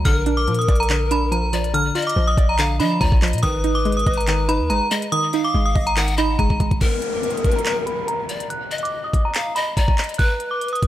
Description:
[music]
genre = hip hop, trap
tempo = 142 BPM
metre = 4/4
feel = half-time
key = unclear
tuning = A4 = 440 Hz
[part]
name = metallic FM bell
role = melody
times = 0.0-10.9 s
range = Bb5 to Gb6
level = -24 LUFS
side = equal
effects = chorus, tremolo, low-pass filter
[part]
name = hollow square pluck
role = accompaniment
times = 0.0-6.8 s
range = D3 to Eb5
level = -24 LUFS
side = right 2 dB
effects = chorus
[part]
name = warm 808-style bass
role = bass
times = 0.0-6.8 s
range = Gb1 to F3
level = -21 LUFS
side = equal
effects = none
[part]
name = breathy pan flute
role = second line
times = 0.1-10.9 s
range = Bb4 to Gb5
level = -26 LUFS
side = left 3 dB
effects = tape echo
[part]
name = trap drum kit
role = drums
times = 0.1-10.9 s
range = handclaps, hi-hat, kick drum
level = -21 LUFS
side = equal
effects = none
[part]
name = downlifter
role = sound effects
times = 6.8-10.2 s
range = none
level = -30 LUFS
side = left 2 dB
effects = none
[sound]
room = little or no reverb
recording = none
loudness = -17 LUFS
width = side -13 dB against mid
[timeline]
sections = 0.0-6.8 A section; 6.8-10.9 B section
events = drum fill 6.4-6.8; filter sweep on synth bell 6.8-10.9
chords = 0.1 Bb; 3.4 Abm; 6.8 N.C.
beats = | 0.05 0.47 0.90 1.32 | 1.74 2.16 2.59 3.01 | 3.43 3.85 4.28 4.70 | 5.12 5.54 5.97 6.39 | 6.81 7.23 7.66 8.08 | 8.50 8.92 9.35 9.77 | 10.19 10.62

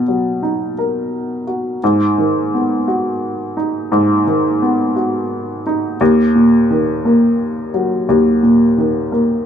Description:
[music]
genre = folk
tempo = 57 BPM (dotted quarters)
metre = 6/8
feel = straight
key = G# minor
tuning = A4 = 440 Hz
[part]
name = warm upright piano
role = solo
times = 0.0-9.5 s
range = D#2 to A#4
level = -13 LUFS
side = equal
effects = none
[sound]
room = wet small room reverb, RT60 0.5 s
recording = heard from further back in the room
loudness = -13 LUFS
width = side -8 dB against mid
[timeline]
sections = 0.0-1.8 A section; 1.8-9.5 A section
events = none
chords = 0.0 Bmaj7; 1.8 G#m7; 6.0 D#m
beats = 0.76 | 1.82 2.87 | 3.92 4.96 | 6.00 7.04 | 8.08 9.13

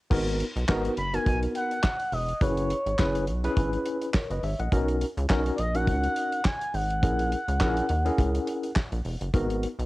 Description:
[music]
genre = early-eighties boogie funk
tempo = 104 BPM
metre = 4/4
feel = swing 56% on 16ths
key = G# minor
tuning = A4 = 440 Hz
[part]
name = tine electric piano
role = accompaniment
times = 0.1-9.7 s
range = B3 to F#5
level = -29 LUFS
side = left 1 dB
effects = overdrive, fast stereo tremolo, cassette tape
[part]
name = rubbery square bass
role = bass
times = 0.1-9.9 s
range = E1 to D#2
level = -28 LUFS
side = equal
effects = none
[part]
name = damped 70s drum kit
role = drums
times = 0.1-9.9 s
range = crash cymbal, handclaps, hi-hat, kick drum, snare drum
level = -28 LUFS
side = equal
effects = cassette tape
[part]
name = expressive portamento lead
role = melody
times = 1.0-9.0 s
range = C#5 to B5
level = -30 LUFS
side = equal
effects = chorus, analog delay
[sound]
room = small room ambience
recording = home recording on cassette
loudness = -24 LUFS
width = side -19 dB against mid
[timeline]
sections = 0.1-9.9 A section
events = none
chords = 0.1 G#m9; 2.4 F#7sus4; 4.7 Bmaj9; 7.0 A#m7b5; 9.3 G#m9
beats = | 0.11 0.68 1.26 1.84 | 2.42 2.99 3.57 4.14 | 4.72 5.30 5.88 6.45 | 7.03 7.61 8.18 8.76 | 9.34

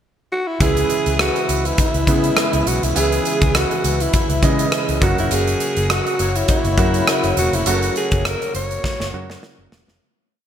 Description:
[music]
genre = 1980s-style pop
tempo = 102 BPM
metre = 4/4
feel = swing 55% on 16ths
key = C# dorian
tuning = A4 = 440 Hz
[part]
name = breathy alto saxophone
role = melody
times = 0.3-9.4 s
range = E4 to C#5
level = -22 LUFS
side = equal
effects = ping-pong delay
[part]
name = clear baby grand piano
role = accompaniment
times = 0.6-10.0 s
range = C#3 to D#5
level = -23 LUFS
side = right 4 dB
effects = none
[part]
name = analog synth brass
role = stabs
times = 0.6-9.7 s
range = G#3 to C#5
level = -28 LUFS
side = left 4 dB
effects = chorus
[part]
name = vintage muted fingered electric bass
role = bass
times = 0.6-10.0 s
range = E1 to C#3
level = -22 LUFS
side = left 1 dB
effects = none
[part]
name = big rock drum kit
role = drums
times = 0.6-10.0 s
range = hi-hat, kick drum, rim click, snare drum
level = -20 LUFS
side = equal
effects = gated reverb
[sound]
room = moderate plate reverb, RT60 1.6 s, small room reverb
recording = bright 1980s-style digital production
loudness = -16 LUFS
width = side -9 dB against mid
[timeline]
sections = 0.0-0.6 pickup bar; 0.6-10.0 verse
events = fade-out 7.7-10.0; drum fill 8.8-10.0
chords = 0.0 N.C.; 0.6 C#m; 5.0 F#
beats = 0.02 | 0.60 1.19 1.78 2.37 | 2.96 3.55 4.13 4.72 | 5.31 5.90 6.49 7.08 | 7.66 8.25 8.84 9.43

